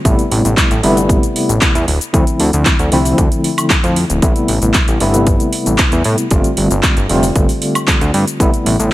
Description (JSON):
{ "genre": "nu-disco, nu disco", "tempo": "115 BPM", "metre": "4/4", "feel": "straight", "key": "A minor", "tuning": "A4 = 441 Hz", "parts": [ { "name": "tine electric piano", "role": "accompaniment", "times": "0.0-8.9 s", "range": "C3 to F4", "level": "-16 LUFS", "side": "left 1 dB", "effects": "medium tremolo, sidechain pumping, ping-pong delay" }, { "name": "fat analog bass", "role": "bass", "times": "0.1-8.9 s", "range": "D1 to A2", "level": "-15 LUFS", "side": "equal", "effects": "none" }, { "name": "electronic kick drum", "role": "drums", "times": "0.1-8.5 s", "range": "none", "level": "-14 LUFS", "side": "equal", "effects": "none" }, { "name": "house drum kit", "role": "drums", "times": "0.1-8.9 s", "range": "handclaps, hi-hat, shaker, woodblock", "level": "-18 LUFS", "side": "equal", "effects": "none" } ], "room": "little or no reverb", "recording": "none", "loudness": "-11 LUFS", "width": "side -16 dB against mid", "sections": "0.0-8.9 A section", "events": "none", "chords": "0.1 Am7; 1.9 Dm7; 4.2 Am7; 6.3 G7sus4; 8.4 Am7", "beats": "| 0.05 0.58 1.10 1.62 | 2.14 2.66 3.18 3.71 | 4.23 4.75 5.27 5.79 | 6.32 6.84 7.36 7.88 | 8.40 8.92" }